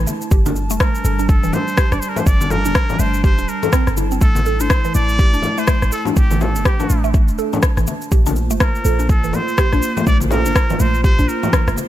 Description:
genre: afro house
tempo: 123 BPM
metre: 4/4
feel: swing 60% on 16ths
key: A phrygian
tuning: A4 = 436 Hz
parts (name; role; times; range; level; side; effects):
- dark analog pad; sustained chords; 0.0-11.9 s; G3 to A5; -26 LUFS; right 3 dB; chorus, sidechain pumping
- mallet-like synth pluck; arpeggios; 0.0-11.9 s; E3 to A4; -24 LUFS; right 1 dB; chorus, phaser, sidechain pumping, digital delay
- warm 808-style bass; bass; 0.0-11.8 s; D1 to Bb1; -19 LUFS; equal; tube saturation, sidechain pumping
- electronic shaker and rim click; drums; 0.1-11.9 s; none; -24 LUFS; left 2 dB; none
- congas; percussion; 0.1-11.9 s; none; -24 LUFS; left 4 dB; none
- electronic kick drum; drums; 0.3-11.6 s; none; -15 LUFS; equal; none
- trumpet with straight mute; melody; 0.8-11.8 s; G4 to D5; -23 LUFS; equal; digital delay
room: little or no reverb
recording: none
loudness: -14 LUFS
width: side -13 dB against mid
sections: 0.0-11.9 A section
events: none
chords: 0.3 Gm; 4.2 A5; 8.1 Bb5

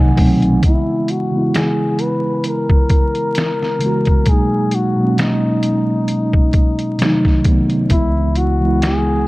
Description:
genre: lo-fi hip hop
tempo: 66 BPM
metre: 4/4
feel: swing 55% on 16ths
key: C# dorian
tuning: A4 = 440 Hz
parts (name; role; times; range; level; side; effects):
- mellow tine electric piano; accompaniment; 0.0-9.3 s; B2 to G#5; -17 LUFS; right 1 dB; medium stereo tremolo, cassette tape, low-pass filter, dub echo
- upright bass; bass; 0.0-0.6, 7.9-9.3 s; B1 to C#2; -18 LUFS; equal; none
- lo-fi sampler-style drum kit; drums; 0.2-9.1 s; finger snaps, hi-hat, kick drum, snare drum; -16 LUFS; equal; vintage 12-bit sampler grit
- breathy flugelhorn; melody; 0.6-9.3 s; D#4 to B4; -21 LUFS; left 2 dB; low-pass filter, dub echo
room: light reverb, small room ambience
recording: echo-heavy mix, vinyl crackle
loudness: -13 LUFS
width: side -20 dB against mid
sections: 0.6-9.3 A section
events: filter sweep 0.6-9.3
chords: 0.0 Cdim7; 0.6 C#m7; 4.3 G#m9/B; 7.0 Cdim7; 7.9 C#m7

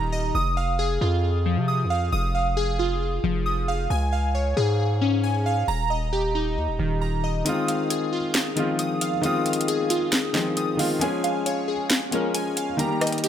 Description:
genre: hip hop, trap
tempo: 135 BPM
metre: 4/4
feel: half-time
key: F minor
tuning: A4 = 441 Hz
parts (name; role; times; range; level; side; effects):
- glassy digital keys; arpeggios; 0.0-13.3 s; Eb3 to Eb6; -25 LUFS; equal; chorus, ping-pong delay
- distorted 808-style bass; bass; 0.0-7.4 s; Eb1 to C3; -25 LUFS; equal; distortion
- felt-muted upright piano; accompaniment; 7.5-13.3 s; Eb3 to Bb4; -25 LUFS; left 2 dB; none
- trap drum kit; drums; 7.5-13.3 s; hi-hat, rim click, snare drum; -25 LUFS; equal; none
room: light reverb, digital ambience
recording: none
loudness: -21 LUFS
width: side -10 dB against mid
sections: 0.0-13.3 A section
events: kick muted 7.5-13.3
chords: 0.3 Fm7; 3.9 Db; 5.7 Eb; 7.5 Fm7; 11.0 Db

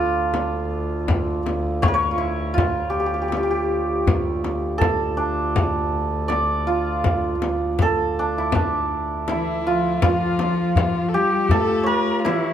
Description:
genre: Persian modal ensemble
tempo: 81 BPM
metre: 4/4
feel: straight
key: D avaz esfahan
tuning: A4 = 440 Hz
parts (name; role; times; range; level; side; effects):
- santur; melody; 0.0-12.5 s; D4 to D5; -22 LUFS; right 2 dB; none
- clear double bass; drone; 0.0-10.1 s; D2; -28 LUFS; left 1 dB; none
- frame drum; percussion; 0.3-12.4 s; none; -26 LUFS; left 4 dB; none
- tombak; percussion; 0.3-12.5 s; none; -24 LUFS; left 1 dB; none
- clear kamancheh; second line; 9.3-12.5 s; E4 to Bb4+49c; -27 LUFS; left 6 dB; none
- rich cello; second line; 9.3-12.5 s; E3 to A3; -25 LUFS; left 4 dB; none
room: moderate recital hall reverb, RT60 1.7 s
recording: close, detailed microphones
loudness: -19 LUFS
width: side -10 dB against mid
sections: 0.0-10.0 A section; 10.0-12.5 B section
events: none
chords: none

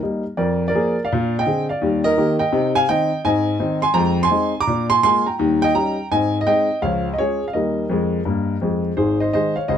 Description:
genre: jazz, stride piano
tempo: 168 BPM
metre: 4/4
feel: swing 64% on 8ths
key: Ab major from 3.2 s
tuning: A4 = 440 Hz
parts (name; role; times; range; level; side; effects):
- warm grand piano; solo; 0.0-9.8 s; Ab1 to D6; -17 LUFS; equal; none
room: moderate booth ambience, RT60 0.3 s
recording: none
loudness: -17 LUFS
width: side -8 dB against mid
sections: 0.0-9.0 A section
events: none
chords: 0.4 Bb7/F; 1.1 Bb9; 1.8 Eb; 2.5 Cm; 3.2 Ab; 4.0 Fm7; 4.7 Bb7; 5.4 Eb7; 6.1 Ab; 6.8 Db; 7.5 Eb; 9.0 Ab

